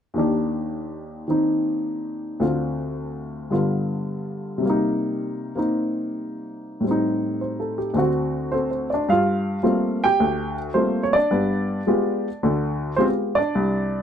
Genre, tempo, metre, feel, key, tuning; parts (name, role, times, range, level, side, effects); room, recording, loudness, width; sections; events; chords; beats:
solo jazz; 108 BPM; 4/4; swing 69% on 8ths; G minor; A4 = 441 Hz
warm baby grand piano; solo; 0.1-14.0 s; C2 to G5; -21 LUFS; equal
moderate club reverb, RT60 0.6 s; -20 LUFS; side -8 dB against mid
0.2-9.1 A section; 9.1-14.0 B section
0.2 Ebmaj7; 2.4 Dm7; 3.5 G7; 4.6 Cm7; 6.9 Am7b5; 8.0 D7; 9.1 Gm11; 11.3 G7b9
| 0.18 0.74 1.29 1.85 | 2.41 2.96 3.52 4.08 | 4.64 5.19 5.75 6.31 | 6.86 7.42 7.97 8.53 | 9.09 9.64 10.20 10.76 | 11.31 11.87 12.42 12.98 | 13.54